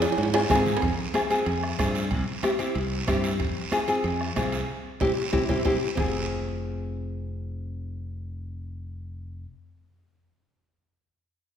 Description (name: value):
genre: latin, cumbia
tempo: 186 BPM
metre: 4/4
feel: straight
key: F harmonic minor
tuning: A4 = 439 Hz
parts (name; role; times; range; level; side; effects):
- nylon-string guitar; accompaniment; 0.0-9.5 s; C4 to Ab4; -26 LUFS; left 2 dB; none
- modern bright fingered electric bass; bass; 0.0-9.4 s; F1 to Ab2; -31 LUFS; equal; none
- guiro; percussion; 0.0-6.0 s; none; -37 LUFS; right 4 dB; none
- timbales and cowbell; percussion; 0.0-6.0 s; none; -33 LUFS; right 6 dB; none
- congas; percussion; 0.2-6.0 s; none; -37 LUFS; right 2 dB; none
- bombo; percussion; 0.3-6.1 s; none; -32 LUFS; right 2 dB; none
room: wet scoring stage reverb, RT60 1.7 s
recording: recorded in a church or concert hall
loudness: -24 LUFS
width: side -9 dB against mid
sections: 0.8-6.0 A section; 6.0-8.6 B section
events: drum fill 0.0-0.8, 5.2-6.0; band accent 4.7-6.0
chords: 0.0 Fm; 2.1 C; 3.4 Fm; 4.7 C; 6.0 Fm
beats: 0.18 0.50 | 0.82 1.14 1.46 1.79 | 2.11 2.43 2.75 3.07 | 3.40 3.72 4.04 4.36 | 4.68 5.01 5.33 5.65 | 5.97 6.30 6.62 6.94 | 7.26 7.58 7.91 8.23